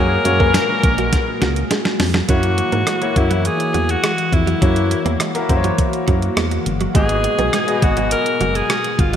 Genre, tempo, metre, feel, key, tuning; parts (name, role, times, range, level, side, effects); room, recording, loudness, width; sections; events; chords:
1980s-style pop; 103 BPM; 4/4; straight; A4 = 439 Hz
edgy alto saxophone; melody; 0.0-9.2 s; E4 to A#4; -20 LUFS; equal; digital delay
clear baby grand piano; accompaniment; 0.0-9.2 s; G#2 to D#5; -22 LUFS; left 3 dB; lush chorus
phased analog pad; sustained chords; 0.0-9.2 s; A#2 to F#4; -25 LUFS; left 1 dB; phaser, chorus
direct-recorded clean electric guitar; riff; 0.0-9.2 s; F#3 to B3; -26 LUFS; right 4 dB; ensemble chorus, digital delay
solid FM bass; bass; 0.0-9.2 s; F#1 to G#2; -20 LUFS; equal
clean 12-bit digital drum machine; drums; 0.3-9.2 s; hi-hat, kick drum, rim click, snare drum, tambourine; -19 LUFS; equal
wet plate reverb, RT60 2.4 s; bright 1980s-style digital production; -15 LUFS; side -9 dB against mid
0.0-2.3 A section; 2.3-9.2 B section
drum fill 1.1-2.3
0.0 F#add9; 2.3 F#7; 7.0 G#m7